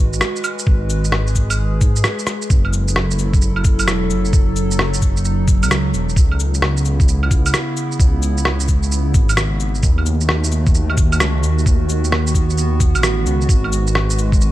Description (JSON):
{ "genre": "future garage", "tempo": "131 BPM", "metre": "4/4", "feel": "swing 64% on 16ths", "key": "unclear", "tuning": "A4 = 440 Hz", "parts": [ { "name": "warbly tape-like pad", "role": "sustained chords", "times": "0.0-14.5 s", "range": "C#3 to B4", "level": "-24 LUFS", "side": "right 2 dB", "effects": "chorus, built-in reverb, sidechain pumping" }, { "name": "dark detuned saw bass", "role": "bass", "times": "0.0-14.5 s", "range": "E1 to G#2", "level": "-18 LUFS", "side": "equal", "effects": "none" }, { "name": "electronic shaker, rim click, cabasa and claves", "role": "drums", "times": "0.1-14.5 s", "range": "none", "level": "-21 LUFS", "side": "right 1 dB", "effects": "small room ambience" }, { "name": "electronic kick drum", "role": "drums", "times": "0.7-14.4 s", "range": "none", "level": "-15 LUFS", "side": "equal", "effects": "small room ambience" } ], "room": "little or no reverb", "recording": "vinyl crackle", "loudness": "-14 LUFS", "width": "side -15 dB against mid", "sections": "0.0-2.5 A section; 2.5-14.5 B section", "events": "break 2.0-2.5", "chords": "0.0 G#m7; 2.5 F#m7; 6.2 C#m7; 9.8 D#dim; 13.5 G#m7" }